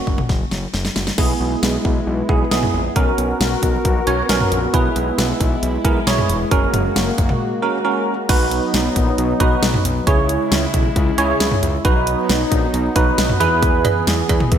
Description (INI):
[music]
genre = synth-pop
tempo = 135 BPM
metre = 4/4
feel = straight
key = B major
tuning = A4 = 440 Hz
[part]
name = bell-like tine electric piano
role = accompaniment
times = 0.0-14.1 s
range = A#3 to C#5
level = -21 LUFS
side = right 4 dB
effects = analog chorus
[part]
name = fat analog bass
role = bass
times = 0.1-14.6 s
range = E1 to E2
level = -22 LUFS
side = equal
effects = none
[part]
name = pop drum kit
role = drums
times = 0.1-14.6 s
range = cowbell, crash cymbal, hi-hat, kick drum, snare drum, toms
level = -19 LUFS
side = equal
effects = gated reverb
[part]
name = brassy analog pad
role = sustained chords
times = 1.2-14.6 s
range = C#3 to A#4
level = -22 LUFS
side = left 1 dB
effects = chorus
[sound]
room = moderate lush hall reverb, RT60 1.8 s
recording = bright 1980s-style digital production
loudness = -15 LUFS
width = side -9 dB against mid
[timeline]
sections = 0.0-1.2 A section; 1.2-8.3 B section; 8.3-14.6 C section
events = drum fill 0.3-1.2; break 7.4-8.3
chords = 0.0 F#; 1.2 E/B; 3.0 F#/B; 4.7 E/B; 6.5 F#add9; 8.3 B; 10.1 C#m; 11.8 B; 13.4 E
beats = 0.29 0.74 | 1.18 1.63 2.07 2.51 | 2.96 3.40 3.85 4.29 | 4.74 5.18 5.63 6.07 | 6.51 6.96 7.40 7.85 | 8.29 8.74 9.18 9.63 | 10.07 10.51 10.96 11.40 | 11.85 12.29 12.74 13.18 | 13.63 14.07 14.51